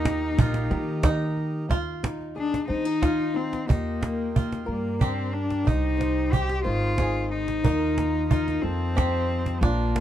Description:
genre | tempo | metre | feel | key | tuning
acoustic folk duo or small band | 61 BPM (dotted quarters) | 6/8 | straight | Eb major | A4 = 438 Hz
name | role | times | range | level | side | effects
warm cello | melody | 0.0-10.0 s | Bb3 to G4 | -27 LUFS | left 2 dB | none
fingerpicked old ladder-braced acoustic guitar | accompaniment | 0.0-10.0 s | Eb2 to Bb4 | -33 LUFS | left 1 dB | none
pedal harmonium | sustained chords | 0.0-10.0 s | Ab3 to C6 | -38 LUFS | right 4 dB | none
bluegrass banjo | arpeggios | 0.0-10.0 s | D4 to Ab4 | -34 LUFS | right 3 dB | none
upright bass | bass | 0.0-10.0 s | Ab1 to Eb3 | -29 LUFS | equal | none
cajon | percussion | 0.1-10.0 s | none | -24 LUFS | right 2 dB | none
room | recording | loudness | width
light reverb | dark, warm production | -23 LUFS | side -11 dB against mid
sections
0.0-1.7 A section; 1.7-3.7 B section; 3.7-10.0 C section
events
none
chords
0.0 Eb; 1.7 Ab5/Eb; 3.7 Ebadd9; 4.7 Gm; 5.7 Cm; 6.6 Ab; 7.6 Ebsus2; 8.6 F7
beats
0.71 | 1.70 2.69 | 3.68 4.67 | 5.66 6.65 | 7.64 8.63 | 9.62

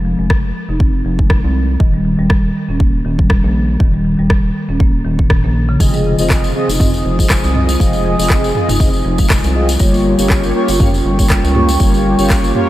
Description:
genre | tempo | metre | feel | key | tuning
afro house | 120 BPM | 4/4 | swing 55% on 16ths | F minor | A4 = 440 Hz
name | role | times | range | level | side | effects
marimba with soft mallets | arpeggios | 0.0-12.3 s | Bb2 to F4 | -18 LUFS | equal | sidechain pumping, low-pass filter, analog delay
round analog bass | bass | 0.0-12.5 s | Eb1 to Db2 | -18 LUFS | equal | sidechain pumping
electronic kick drum | drums | 0.3-12.4 s | none | -13 LUFS | equal | none
house drum kit | drums | 0.3-12.7 s | handclaps, rim click, toms | -22 LUFS | equal | none
dark analog pad | sustained chords | 6.6-12.7 s | F4 to Eb6 | -22 LUFS | equal | chorus, phaser, sidechain pumping
mellow synth brass | stabs | 5.8-12.7 s | Bb3 to Eb5 | -18 LUFS | right 1 dB | chorus, sidechain pumping, analog delay
tambourine | percussion | 5.8-12.5 s | none | -25 LUFS | left 3 dB | none
room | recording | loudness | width
light reverb, digital ambience | faint mains hum | -11 LUFS | side -15 dB against mid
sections
0.0-12.7 A section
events
filter sweep on marimba 0.0-12.7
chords
0.0 F5; 1.8 Eb5; 5.8 Fm7; 9.8 Gm7b5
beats
0.30 0.80 1.30 | 1.80 2.30 2.80 3.30 | 3.80 4.30 4.80 5.30 | 5.80 6.30 6.80 7.30 | 7.80 8.30 8.80 9.30 | 9.80 10.30 10.80 11.30 | 11.80 12.30

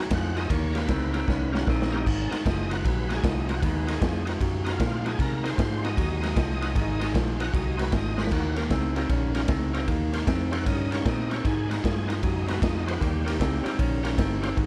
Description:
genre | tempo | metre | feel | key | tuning
electric blues shuffle | 153 BPM | 4/4 | swing 64% on 8ths | Ab mixolydian | A4 = 442 Hz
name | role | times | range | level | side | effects
bright tonewheel organ | accompaniment | 0.0-14.5 s | G3 to Gb5 | -37 LUFS | equal | slow rotary speaker, overdrive, chorus vibrato, plate reverb
electric guitar through a small old amp | riff | 0.0-14.7 s | Ab2 to Db4 | -32 LUFS | equal | none
vintage muted fingered electric bass | bass | 0.1-14.7 s | Gb1 to C3 | -31 LUFS | equal | none
raw garage drum kit | drums | 0.1-14.7 s | crash cymbal, kick drum, ride cymbal, snare drum | -30 LUFS | equal | none
room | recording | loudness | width
little or no reverb | none | -26 LUFS | mono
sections
0.0-2.1 A section; 2.1-14.6 A section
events
drum fill 1.3-2.1, 8.1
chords
0.5 Eb7; 2.1 Ab7; 8.3 Eb7; 11.4 Ab7; 13.0 Eb7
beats
0.10 | 0.49 0.88 1.27 1.67 | 2.06 2.45 2.84 3.23 | 3.62 4.01 4.40 4.79 | 5.19 5.58 5.97 6.36 | 6.75 7.14 7.53 7.92 | 8.31 8.71 9.10 9.49 | 9.88 10.27 10.66 11.05 | 11.44 11.83 12.22 12.62 | 13.01 13.40 13.79 14.18 | 14.57

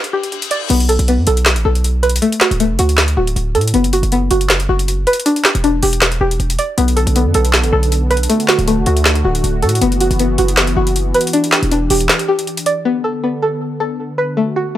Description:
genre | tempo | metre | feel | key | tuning
hip hop, trap | 158 BPM | 4/4 | half-time | B minor | A4 = 440 Hz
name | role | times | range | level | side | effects
string-like resonator pluck | arpeggios | 0.0-14.8 s | A3 to D5 | -17 LUFS | left 1 dB | chorus, low-pass filter, analog delay
trap drum kit | drums | 0.0-12.8 s | crash cymbal, handclaps, hi-hat, snare drum | -17 LUFS | equal | none
reverse cymbal | sound effects | 0.1-0.7 s | none | -26 LUFS | left 8 dB | none
hard-hitting 808-style bass | bass | 0.7-12.1 s | D1 to A2 | -16 LUFS | equal | none
warm analog pad | sustained chords | 6.8-14.8 s | D3 to A4 | -21 LUFS | equal | chorus
room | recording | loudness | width
little or no reverb | dry, gritty hardware recording, transformer saturation | -12 LUFS | side -13 dB against mid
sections
0.7-12.9 A section; 12.9-14.8 B section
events
break 0.0-0.7; reverse cymbal 0.1-0.7; kick muted 12.1-12.9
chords
0.0 Dsus4; 0.7 B5; 2.2 D; 3.7 F#sus4; 5.3 Em7; 6.8 Bm7; 8.3 D; 9.8 F#7sus4; 11.3 Em7; 12.9 Bm7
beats
0.32 | 0.70 1.08 1.46 1.84 | 2.22 2.60 2.98 3.36 | 3.74 4.12 4.50 4.88 | 5.26 5.64 6.02 6.40 | 6.78 7.16 7.54 7.92 | 8.30 8.68 9.05 9.44 | 9.81 10.20 10.57 10.95 | 11.33 11.71 12.09 12.47 | 12.85 13.23 13.61 13.99 | 14.37 14.75

